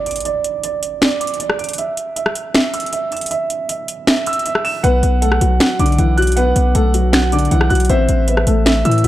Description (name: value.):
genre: hip hop, trap.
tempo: 157 BPM.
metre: 4/4.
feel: half-time.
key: unclear.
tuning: A4 = 440 Hz.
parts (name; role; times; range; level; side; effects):
dark concert grand piano; accompaniment; 0.0-9.1 s; D5 to E7; -20 LUFS; right 5 dB; low-pass filter.
trap drum kit; drums; 0.1-9.1 s; finger snaps, hi-hat, rim click, snare drum; -18 LUFS; equal; overdrive.
dark concert grand piano; melody; 4.8-9.1 s; D3 to C5; -18 LUFS; left 3 dB; low-pass filter.
hard-hitting 808-style bass; bass; 4.8-9.1 s; A1 to A2; -14 LUFS; equal; none.
room: light reverb, digital ambience.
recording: dark, warm production.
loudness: -14 LUFS.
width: side -14 dB against mid.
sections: 0.0-9.1 A section.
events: break 0.0-4.8; filter sweep 0.0-4.8.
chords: 0.0 N.C.; 4.8 Bm7; 7.9 Am.